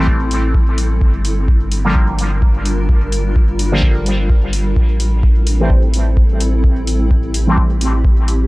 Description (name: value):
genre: dub techno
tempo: 128 BPM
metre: 4/4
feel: swing 54% on 16ths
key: A phrygian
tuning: A4 = 440 Hz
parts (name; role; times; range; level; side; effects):
- granular cloud pad; sustained chords; 0.0-8.5 s; G3 to Bb4; -23 LUFS; equal; built-in reverb, sidechain pumping
- resonant sweep polysynth; stabs; 0.0-7.6 s; D3 to C4; -21 LUFS; equal; chorus, phaser, sidechain pumping, dub echo
- soft dub sub bass; bass; 0.0-8.5 s; G1 to A1; -17 LUFS; equal; sidechain pumping
- electronic kick drum; drums; 0.1-8.1 s; none; -14 LUFS; equal; none
- electronic hi-hat; drums; 0.3-8.4 s; none; -26 LUFS; left 1 dB; none
room: little or no reverb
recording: dry, gritty hardware recording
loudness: -12 LUFS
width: side -20 dB against mid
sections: 0.0-8.5 A section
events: none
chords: 0.0 Am7; 1.0 Gm7; 4.8 Am7